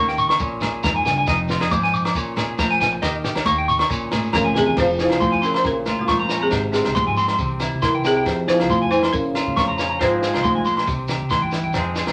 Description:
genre	highlife guitar band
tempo	138 BPM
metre	4/4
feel	swing 54% on 16ths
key	F harmonic minor from 4.8 s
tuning	A4 = 437 Hz
part	folk marimba with hard mallets	melody	0.0-1.0, 4.3-10.8 s	Ab3 to C5	-24 LUFS	equal	none
part	semi-hollow electric guitar	accompaniment	0.0-12.1 s	F2 to Ab4	-29 LUFS	equal	none
part	clean electric guitar	arpeggios	0.0-12.1 s	C5 to D6	-23 LUFS	equal	none
part	upright bass	bass	0.0-12.1 s	F1 to Eb3	-32 LUFS	equal	none
part	compact cocktail drum kit	drums	0.1-12.1 s	crash cymbal, kick drum, snare drum	-30 LUFS	equal	none
part	congas	percussion	0.2-12.0 s	none	-31 LUFS	equal	none
part	shekere	percussion	0.2-12.1 s	none	-35 LUFS	equal	none
part	agogo bells	percussion	0.3-12.1 s	none	-34 LUFS	equal	none
part	breathy trombone	second line	4.3-10.8 s	Bb2 to F3	-29 LUFS	equal	none
room	wet studio reverb, RT60 0.6 s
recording	none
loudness	-20 LUFS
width	mono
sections	0.0-4.8 A section; 4.8-12.1 B section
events	drum fill 4.4-4.8, 11.3-11.7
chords	0.4 Bbm7; 1.3 Fm7; 2.1 Bbm7; 3.0 Eb7; 3.9 Bbm7; 4.8 Fm; 5.6 Bbm; 6.5 Fm/Ab; 7.4 C; 8.3 Fm; 9.1 Bbm; 10.0 Fm/Ab; 10.9 C

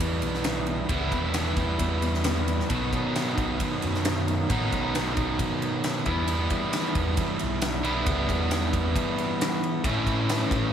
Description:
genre	quiet-loud alternative rock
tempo	134 BPM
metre	4/4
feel	straight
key	E dorian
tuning	A4 = 439 Hz
part	clean electric guitar	arpeggios	0.0-6.3 s	B2 to E4	-36 LUFS	left 7 dB	lush chorus, digital delay
part	cranked stack guitar	riff	0.0-10.7 s	A2 to E4	-27 LUFS	right 1 dB	overdrive
part	overdriven picked electric bass	bass	0.0-10.7 s	E1 to E3	-30 LUFS	equal	none
part	big rock drum kit	drums	0.0-10.6 s	kick drum, ride cymbal, snare drum	-29 LUFS	equal	none
room	light reverb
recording	none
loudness	-24 LUFS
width	side -8 dB against mid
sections	0.0-10.7 A section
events	none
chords	0.0 Em; 2.7 B; 6.1 Em; 9.8 A

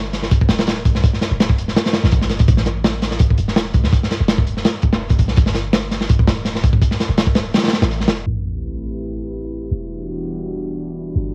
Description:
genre	drum and bass, jungle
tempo	166 BPM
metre	4/4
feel	straight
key	A minor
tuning	A4 = 440 Hz
part	warm 808-style bass	bass	0.0-11.3 s	D1 to D2	-25 LUFS	equal	none
part	crunchy breakbeat drum kit	drums	0.1-8.2 s	hi-hat, kick drum, snare drum	-18 LUFS	equal	cassette tape
part	airy breathy pad	sustained chords	8.3-11.3 s	E3 to B4	-29 LUFS	equal	chorus
part	sub drop	sound effects	8.3-9.7 s	none	-32 LUFS	equal	none
room	studio ambience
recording	home recording on cassette, vinyl crackle, low-pass filter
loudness	-18 LUFS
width	mono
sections	0.0-8.3 A section; 8.3-11.3 B section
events	kick drops out 7.5-8.3; impact 8.3-9.7; filter sweep 8.3-11.3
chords	0.0 G5; 1.0 Dm; 2.5 A5; 3.9 E5; 5.4 G5; 6.8 Dm; 8.3 Am9; 9.7 Em9

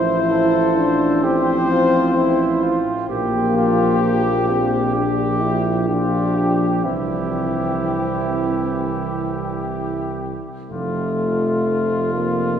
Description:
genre	classical, brass quintet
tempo	63 BPM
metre	4/4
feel	straight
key	F major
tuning	A4 = 440 Hz
part	clear trumpet	melody	0.0-12.6 s	F4 to C5	-24 LUFS	left 5 dB	none
part	warm flugelhorn	second line	0.0-10.2 s	E4 to C5	-26 LUFS	right 4 dB	none
part	mellow French horn	accompaniment	0.0-12.6 s	A3 to E4	-21 LUFS	left 2 dB	none
part	mellow trombone	accompaniment	0.0-12.6 s	E3 to F3	-26 LUFS	right 3 dB	none
part	warm tuba	bass	0.0-12.6 s	F1 to C2	-23 LUFS	right 2 dB	none
room	wet cathedral reverb, RT60 5.5 s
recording	heard from further back in the room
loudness	-17 LUFS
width	side -8 dB against mid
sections	0.0-12.6 A section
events	none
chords	0.0 F/A; 3.1 Gm7/Bb; 6.8 C; 10.7 F

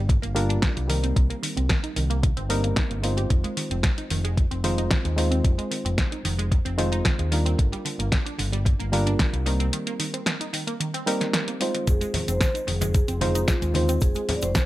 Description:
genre	nu-disco, nu disco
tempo	112 BPM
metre	4/4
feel	straight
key	F dorian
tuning	A4 = 439 Hz
part	reed electric piano	accompaniment	0.0-14.7 s	G3 to C5	-29 LUFS	equal	sidechain pumping, analog delay
part	wide unison pluck	arpeggios	0.0-14.6 s	D3 to G4	-33 LUFS	right 2 dB	sidechain pumping, analog delay
part	overdriven fingered electric bass	bass	0.0-14.5 s	F1 to Eb2	-25 LUFS	equal	none
part	electronic kick drum	drums	0.1-14.7 s	none	-22 LUFS	equal	none
part	house drum kit	drums	0.1-14.7 s	hi-hat, snare drum	-28 LUFS	equal	none
part	vibraphone with soft mallets	melody	11.9-14.7 s	F4 to D5	-30 LUFS	equal	none
part	tube shaker and congas	percussion	11.9-14.7 s	none	-32 LUFS	left 2 dB	none
room	little or no reverb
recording	none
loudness	-22 LUFS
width	side -16 dB against mid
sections	0.0-14.7 A section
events	break 9.7-11.9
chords	0.0 Gm7; 0.9 Cm7; 3.3 Fm7; 7.6 Gm7; 9.5 Cm7; 11.9 Fm7

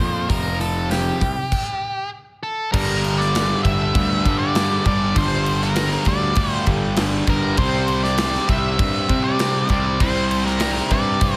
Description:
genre	quiet-loud alternative rock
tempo	99 BPM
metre	4/4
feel	straight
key	G dorian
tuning	A4 = 440 Hz
part	octave-fuzz lead guitar	melody	0.0-11.4 s	G4 to E5	-26 LUFS	equal	distortion
part	picked steel-string acoustic guitar	arpeggios	0.0-1.5 s	F2 to D4	-33 LUFS	equal	none
part	fuzz guitar	riff	0.0-11.4 s	F2 to C4	-27 LUFS	equal	distortion
part	fuzz picked electric bass	bass	0.0-11.4 s	F1 to C3	-26 LUFS	equal	overdrive
part	big rock drum kit	drums	0.0-11.4 s	crash cymbal, hi-hat, kick drum, snare drum	-25 LUFS	equal	none
part	overdriven semi-hollow guitar	riff	2.7-11.4 s	G2 to C4	-30 LUFS	equal	none
room	light reverb, studio ambience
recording	none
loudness	-20 LUFS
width	mono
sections	0.0-2.7 A section; 2.7-11.4 B section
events	stop 1.5-2.7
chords	0.3 F5; 1.2 C5; 2.1 N.C.; 2.7 G5; 7.6 Csus2

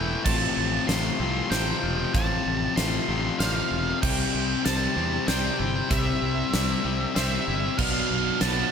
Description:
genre	post-rock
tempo	96 BPM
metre	3/4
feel	straight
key	unclear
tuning	A4 = 441 Hz
part	octave-fuzz lead guitar	melody	0.0-8.7 s	E5 to C6	-29 LUFS	right 5 dB	distortion, tape echo
part	twangy electric guitar	arpeggios	0.0-8.7 s	A2 to C5	-36 LUFS	equal	tape echo
part	distorted electric guitar	riff	0.0-8.7 s	F2 to C4	-28 LUFS	left 10 dB	overdrive
part	fuzz fingered electric bass	bass	0.0-8.6 s	E1 to E2	-29 LUFS	right 1 dB	overdrive
part	electric guitar through a small old amp	arpeggios	0.3-8.7 s	A4 to F5	-42 LUFS	right 10 dB	phaser, tape echo
part	huge arena drum kit	drums	0.3-8.6 s	crash cymbal, hi-hat, kick drum, snare drum	-29 LUFS	right 1 dB	none
part	cranked stack guitar	riff	7.8-8.7 s	B2 to D4	-28 LUFS	right 15 dB	overdrive
room	light reverb, small room ambience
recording	none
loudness	-22 LUFS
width	side -7 dB against mid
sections	0.0-8.7 A section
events	none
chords	0.3 F; 4.0 C; 7.8 Bdim

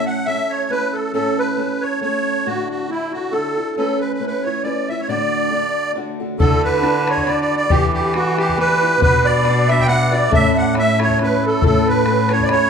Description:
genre	celtic folk, Celtic waltz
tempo	138 BPM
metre	3/4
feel	swing 55% on 8ths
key	D major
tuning	A4 = 440 Hz
part	musette accordion	melody	0.0-12.7 s	E4 to G5	-18 LUFS	right 2 dB	none
part	picked old ladder-braced acoustic guitar	accompaniment	0.0-12.7 s	D2 to B4	-22 LUFS	left 2 dB	none
part	cimbalom	second line	6.4-12.7 s	F#4 to F#5	-22 LUFS	right 3 dB	none
part	rich cello	bass	6.4-12.7 s	A2 to E3	-20 LUFS	left 1 dB	none
part	bodhran	percussion	6.4-12.6 s	none	-21 LUFS	left 2 dB	none
room	wet large studio reverb, RT60 0.9 s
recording	band playing live in one room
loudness	-15 LUFS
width	side -6 dB against mid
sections	0.0-6.4 A section; 6.4-12.7 A section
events	none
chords	0.0 A; 2.5 Dadd9; 3.8 Aadd9; 5.1 D; 6.4 Dadd9; 7.7 Em7; 9.0 Bm; 10.3 A

